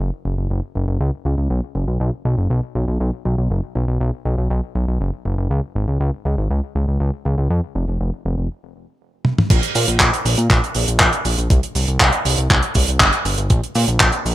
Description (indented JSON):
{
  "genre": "italo disco",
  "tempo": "120 BPM",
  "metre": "4/4",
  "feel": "straight",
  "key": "unclear",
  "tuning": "A4 = 441 Hz",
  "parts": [
    { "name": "fat analog bass", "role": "bass", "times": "0.0-14.3 s", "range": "E#1 to Bb2", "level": "-19 LUFS", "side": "equal", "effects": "none" },
    { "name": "damped 70s drum kit", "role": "drums", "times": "9.2-14.3 s", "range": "cabasa, crash cymbal, handclaps, hi-hat, toms", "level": "-16 LUFS", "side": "right 1 dB", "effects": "small room ambience" },
    { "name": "electronic kick drum", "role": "drums", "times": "9.5-14.1 s", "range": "none", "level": "-17 LUFS", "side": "equal", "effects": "small room ambience" }
  ],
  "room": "light reverb",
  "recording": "bright 1980s-style digital production",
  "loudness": "-16 LUFS",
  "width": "side -15 dB against mid",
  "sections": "0.0-9.5 A section; 9.5-14.3 B section",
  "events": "drum fill 9.3",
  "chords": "none"
}